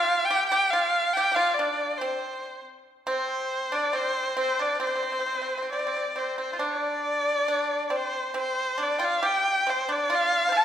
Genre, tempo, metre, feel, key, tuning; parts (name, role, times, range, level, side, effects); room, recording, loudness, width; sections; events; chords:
chinese traditional, Chinese chamber ensemble; 69 BPM; 4/4; rubato; C zhi mode; A4 = 440 Hz
rich erhu; melody; 0.0-10.6 s; C5 to A5; -25 LUFS; equal
pipa; second line; 0.0-10.6 s; C4 to C5; -29 LUFS; right 1 dB
wet recital hall reverb, RT60 1.6 s; recorded in a church or concert hall; -23 LUFS; side -10 dB against mid
0.0-6.6 A section; 6.6-10.6 B section